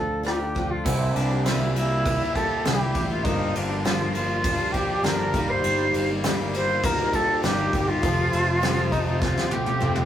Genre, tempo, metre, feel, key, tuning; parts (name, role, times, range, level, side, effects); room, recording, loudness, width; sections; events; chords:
folk rock and heartland rock; 100 BPM; 4/4; straight; A4 = 439 Hz
silver concert flute; melody; 0.0-10.1 s; D4 to C5; -26 LUFS; equal
picked steel-string acoustic guitar; accompaniment; 0.0-10.1 s; G2 to A4; -30 LUFS; left 1 dB
fingered electric bass; bass; 0.0-10.1 s; F1 to D2; -28 LUFS; equal
soft brush drum kit; drums; 0.3-10.1 s; crash cymbal, hi-hat, kick drum, ride cymbal, rim click, snare drum, toms; -27 LUFS; equal
warm concert grand piano; accompaniment; 0.9-10.1 s; Bb3 to C5; -38 LUFS; right 1 dB
crunchy overdriven guitar; riff; 0.9-10.1 s; G2 to G4; -32 LUFS; equal
moderate studio reverb, RT60 0.6 s; rough rehearsal-room recording; -21 LUFS; side -10 dB against mid
0.9-10.1 A section
drum fill 9.2-10.1
0.0 Dm; 0.9 C7; 3.3 Gm7; 5.3 Eb/G; 8.0 Fadd9